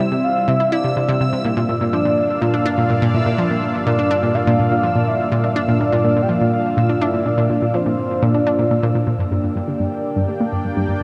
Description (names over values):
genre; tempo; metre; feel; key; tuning
ambient, sequencer-driven space music; 124 BPM; 4/4; straight; unclear; A4 = 440 Hz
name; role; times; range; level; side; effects
soft octave-layered synth lead; melody; 0.0-8.9 s; C5 to G5; -24 LUFS; equal; chorus, phaser, shimmer reverb, delay
sweeping resonant pad; sustained chords; 0.0-11.0 s; G2 to G5; -24 LUFS; equal; chorus, shimmer reverb
analog pluck; riff; 0.0-11.0 s; G2 to E4; -21 LUFS; equal; chorus, delay
bubbling stepped-filter texture; texture; 0.0-9.2 s; E6; -34 LUFS; equal; chorus, built-in reverb, shimmer reverb
room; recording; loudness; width
wet huge ambient reverb, RT60 8.8 s; none; -18 LUFS; mono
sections
0.0-9.2 A section; 9.2-11.0 B section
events
filter sweep on synth arpeggio sound 9.2-11.0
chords
0.0 C; 1.4 Bb/G; 9.2 Gm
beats
0.00 0.48 0.96 | 1.45 1.93 2.42 2.90 | 3.38 3.87 4.35 4.84 | 5.32 5.80 6.29 6.77 | 7.25 7.74 8.22 8.71 | 9.19 9.67 10.16 10.64